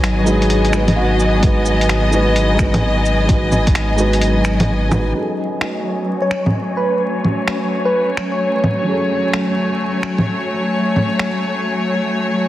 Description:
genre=future garage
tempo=129 BPM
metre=4/4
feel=swing 65% on 16ths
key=F# dorian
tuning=A4 = 440 Hz
part: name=felt-muted upright piano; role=accompaniment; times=0.0-12.5 s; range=F#3 to B4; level=-22 LUFS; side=right 2 dB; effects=sidechain pumping, tape echo
part: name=rich studio string section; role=sustained chords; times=0.0-12.5 s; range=F#3 to G#5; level=-19 LUFS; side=left 1 dB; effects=sidechain pumping, low-pass filter
part: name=soft dub sub bass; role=bass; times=0.0-5.1 s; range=G#1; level=-18 LUFS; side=equal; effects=tube saturation, sidechain pumping
part: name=lo-fi sampler-style drum kit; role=drums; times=0.0-11.3 s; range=bongos, cabasa, finger snaps, hi-hat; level=-20 LUFS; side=equal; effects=vintage 12-bit sampler grit, soft clipping on snare
part: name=soft struck synth lead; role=melody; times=0.3-1.6, 6.2-9.0 s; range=F#4 to C#5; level=-22 LUFS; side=equal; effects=chorus, phaser, tape echo
part: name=electronic kick drum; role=drums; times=1.4-3.7 s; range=none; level=-16 LUFS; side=equal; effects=overdrive, vintage 12-bit sampler grit
part: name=wind-like tuned noise texture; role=texture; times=5.7-11.7 s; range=C#4 to C#5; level=-27 LUFS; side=equal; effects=built-in reverb
room=moderate recital hall reverb, RT60 1.7 s, digital ambience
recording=dense, heavily limited modern master, vinyl crackle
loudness=-14 LUFS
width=side -14 dB against mid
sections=0.0-5.1 A section; 5.1-12.5 B section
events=filter sweep on string section 5.1-12.5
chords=0.0 G#m7; 5.1 F#madd9

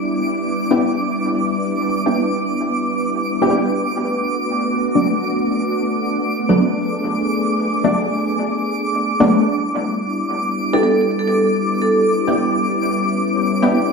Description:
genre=drum and bass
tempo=166 BPM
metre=4/4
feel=straight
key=E dorian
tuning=A4 = 439 Hz
part: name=soft string machine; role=sustained chords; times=0.0-13.9 s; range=G3 to G#4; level=-20 LUFS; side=equal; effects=ensemble chorus, vintage 12-bit sampler grit
part: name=twinkling granular texture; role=texture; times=0.0-13.9 s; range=D6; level=-24 LUFS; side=right 1 dB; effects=built-in reverb
part: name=orchestra-hit-like synth stab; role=stabs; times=0.7-13.7 s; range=F#3 to G4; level=-19 LUFS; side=left 1 dB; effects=built-in reverb, phaser, dub echo
part: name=vibraphone with medium hard mallets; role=melody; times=10.7-12.1 s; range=A4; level=-19 LUFS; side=right 2 dB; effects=dub echo
room=wet digital room reverb, RT60 1.2 s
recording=dark, warm production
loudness=-16 LUFS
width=side -4 dB against mid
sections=0.0-13.9 A section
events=none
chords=0.0 Em7; 3.7 Bm7; 9.5 Em7

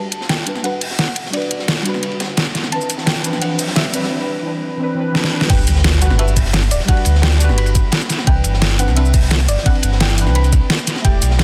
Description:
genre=liquid drum and bass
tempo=173 BPM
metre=4/4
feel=straight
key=G major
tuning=A4 = 441 Hz
part: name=soft round pluck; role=melody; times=0.0-11.4 s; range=D5 to B5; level=-30 LUFS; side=equal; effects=lush chorus, digital delay
part: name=deep mellow chord stab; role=accompaniment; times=0.0-11.4 s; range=E3 to D5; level=-25 LUFS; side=equal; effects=chorus, digital delay
part: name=sub bass with octave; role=bass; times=0.0-11.4 s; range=D1 to D2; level=-17 LUFS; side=equal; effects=high-pass filter
part: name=riser and impact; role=sound effects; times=0.0-6.9 s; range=none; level=-28 LUFS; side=equal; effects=none
part: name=crunchy breakbeat drum kit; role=drums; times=0.1-11.4 s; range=hi-hat, ride cymbal, snare drum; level=-29 LUFS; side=equal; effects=high-pass filter on cymbals, high-pass filter on hats, high-pass filter on snare, high-pass filter on room
part: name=pop drum kit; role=drums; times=0.1-11.4 s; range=cabasa, crash cymbal, hi-hat, snare drum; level=-21 LUFS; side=equal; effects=overdrive
part: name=electronic kick drum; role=drums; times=5.5-11.1 s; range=none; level=-17 LUFS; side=equal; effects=overdrive
room=light reverb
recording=dense, heavily limited modern master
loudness=-16 LUFS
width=mono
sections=0.0-5.5 A section; 5.5-11.4 B section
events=build-up 0.0-5.5; riser 0.0-4.1; filter sweep on synth stab 0.0-5.5; drum fill 5.2-5.5; drop 5.5-11.4; impact 5.5-6.9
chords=0.0 Gmaj7; 2.5 Cmaj9; 5.5 Gmaj7; 8.1 Cmaj9

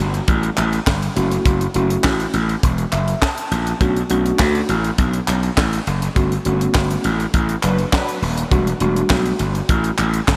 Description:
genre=early-eighties boogie funk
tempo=102 BPM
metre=4/4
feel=straight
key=E dorian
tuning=A4 = 440 Hz
part: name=mellow tine electric piano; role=accompaniment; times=0.0-9.4 s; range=G3 to A5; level=-26 LUFS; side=equal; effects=none
part: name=gritty slap bass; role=bass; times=0.0-10.4 s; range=D#1 to D2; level=-22 LUFS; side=equal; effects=overdrive
part: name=tight funk drum kit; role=drums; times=0.1-10.4 s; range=hi-hat, kick drum, snare drum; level=-24 LUFS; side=equal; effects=none
part: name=group handclap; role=percussion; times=0.6-10.4 s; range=none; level=-29 LUFS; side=equal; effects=none
part: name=mellow synth brass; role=second line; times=7.6-8.2 s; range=F#3 to B4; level=-29 LUFS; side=equal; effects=chorus, phaser
room=moderate huge ambient reverb, RT60 5.8 s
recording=dreamy mix soaked in reverb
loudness=-18 LUFS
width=mono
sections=0.0-10.4 A section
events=tine electric piano fill 2.6-3.8; band accent 6.2-8.5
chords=0.0 Emadd11 (rootless); 1.2 F#m7; 3.8 Bm9; 6.2 Gmaj9#11; 8.5 Em11

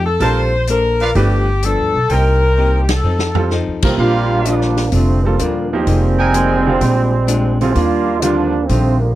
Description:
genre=jazz, big band swing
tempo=127 BPM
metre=4/4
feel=swing 69% on 8ths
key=Bb major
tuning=A4 = 440 Hz
part: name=clear saxophone section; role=melody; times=0.0-3.5 s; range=G4 to C5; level=-18 LUFS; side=left 3 dB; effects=none
part: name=archtop guitar, miked and amplified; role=accompaniment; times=0.0-9.0 s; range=G2 to C5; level=-23 LUFS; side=left 5 dB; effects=none
part: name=upright bass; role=bass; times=0.0-9.2 s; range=F1 to F2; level=-17 LUFS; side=equal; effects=none
part: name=bright upright piano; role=accompaniment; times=0.2-8.5 s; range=Bb2 to B4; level=-20 LUFS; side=right 3 dB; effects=none
part: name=warm trumpet section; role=stabs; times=0.2-6.8 s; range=D4 to A5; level=-20 LUFS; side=right 3 dB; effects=none
part: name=swinging big-band drum kit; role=drums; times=0.2-8.8 s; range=crash cymbal, hi-hat, kick drum, ride cymbal, snare drum, toms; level=-22 LUFS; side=equal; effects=none
part: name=warm trombone section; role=second line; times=3.8-9.1 s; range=D3 to F4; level=-17 LUFS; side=right 3 dB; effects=none
room=little or no reverb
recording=dry, close 1970s-style studio recording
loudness=-13 LUFS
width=side -14 dB against mid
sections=0.0-4.0 A section; 4.0-9.2 B section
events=drum fill 2.6-3.5; band accent 2.8; trombone section solo 4.0-9.2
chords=0.2 Bbmaj9; 1.2 G7; 2.1 Cm7; 3.0 F7; 4.0 Bb6; 5.9 Fm11; 6.8 Bb7; 7.8 Ebmaj9

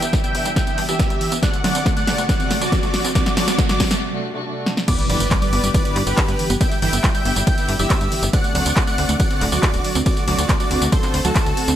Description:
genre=uplifting trance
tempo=139 BPM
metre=4/4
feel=straight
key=G major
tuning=A4 = 437 Hz
part: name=dense compressed supersaw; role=melody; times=0.0-11.7 s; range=F#4 to G5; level=-25 LUFS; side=right 1 dB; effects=sidechain pumping, low-pass filter, digital delay
part: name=plucky unison lead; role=second line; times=0.0-11.7 s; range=A5 to G6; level=-29 LUFS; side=left 1 dB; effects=sidechain pumping, digital delay
part: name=warm chamber string section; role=sustained chords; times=0.0-11.5 s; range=C3 to G4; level=-29 LUFS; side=left 2 dB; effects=sidechain pumping
part: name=wide unison pluck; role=arpeggios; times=0.0-11.7 s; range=E3 to C4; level=-27 LUFS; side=right 4 dB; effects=cassette tape, sidechain pumping, digital delay
part: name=tight sequencer bass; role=bass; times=0.0-11.8 s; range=D1 to G2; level=-24 LUFS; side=equal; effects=sidechain pumping, high-pass filter
part: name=punchy analog drum machine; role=drums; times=0.0-11.8 s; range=crash cymbal, handclaps, hi-hat, ride cymbal, snare drum, tambourine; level=-23 LUFS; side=equal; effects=none
part: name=riser and impact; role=sound effects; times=0.5-6.6 s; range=none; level=-29 LUFS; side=equal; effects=none
part: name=electronic kick drum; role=drums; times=0.1-11.4 s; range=none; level=-20 LUFS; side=equal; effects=overdrive
room=light reverb, digital ambience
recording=none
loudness=-16 LUFS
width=side -11 dB against mid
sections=0.0-4.9 A section; 4.9-11.8 B section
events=build-up 0.0-4.9; drum fill 0.0-4.0, 4.7; filter sweep on digital synth lead 0.0-4.9; riser 0.5-4.0; break 4.0-4.9; drop 4.9-11.8; impact 4.9-6.6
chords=0.0 G6; 1.4 D7; 4.9 G6; 8.3 D7

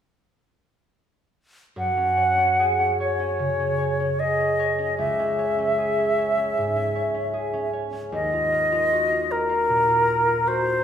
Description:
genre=classical, impressionist duo for flute and harp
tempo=76 BPM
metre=4/4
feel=rubato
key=unclear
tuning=A4 = 441 Hz
part: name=bright silver concert flute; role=melody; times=1.8-10.8 s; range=A#4 to F#5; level=-21 LUFS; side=equal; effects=none
part: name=concert harp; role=accompaniment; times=1.8-10.8 s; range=C#2 to C#5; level=-27 LUFS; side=right 1 dB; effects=none
room=wet recital hall reverb, RT60 1.5 s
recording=recorded in a church or concert hall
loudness=-20 LUFS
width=side -8 dB against mid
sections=1.8-10.8 A section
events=none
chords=1.8 F#sus2; 5.0 C#m; 8.1 D#madd9

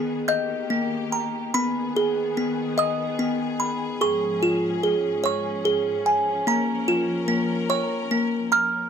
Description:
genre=children's music, lullaby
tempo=49 BPM (dotted quarters)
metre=6/8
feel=rubato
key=G# dorian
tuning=A4 = 440 Hz
part: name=music box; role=melody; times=0.0-8.9 s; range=A#3 to G6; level=-22 LUFS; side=equal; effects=none
part: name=clear symphonic string section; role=sustained chords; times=0.0-8.9 s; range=G#2 to A#4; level=-31 LUFS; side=left 2 dB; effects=none
room=light reverb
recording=dry, close 1970s-style studio recording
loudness=-21 LUFS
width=side -7 dB against mid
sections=0.0-8.9 A section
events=none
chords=0.3 D#; 1.5 G#m; 4.0 C#/G#; 6.5 A#m

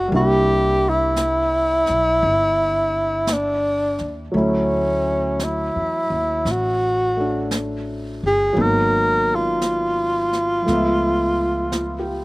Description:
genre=jazz ballad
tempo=57 BPM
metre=4/4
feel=swing 69% on 8ths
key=unclear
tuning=A4 = 436 Hz
part: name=breathy tenor saxophone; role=melody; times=0.0-12.2 s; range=C#4 to A#4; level=-19 LUFS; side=equal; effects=slapback echo
part: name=warm grand piano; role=accompaniment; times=0.0-12.2 s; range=E#3 to E5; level=-24 LUFS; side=equal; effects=slapback echo
part: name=upright bass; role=bass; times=0.0-12.2 s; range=G1 to E2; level=-26 LUFS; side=equal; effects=none
part: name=jazz brush drum kit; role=drums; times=0.1-12.2 s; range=brushed snare drum, hi-hat, snare drum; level=-31 LUFS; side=equal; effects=none
room=little or no reverb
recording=recorded outdoors, with no room sound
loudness=-17 LUFS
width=side -22 dB against mid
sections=0.0-12.2 A section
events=none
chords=0.1 C9; 4.3 Dmaj9; 8.6 G#m9; 10.7 C#7alt

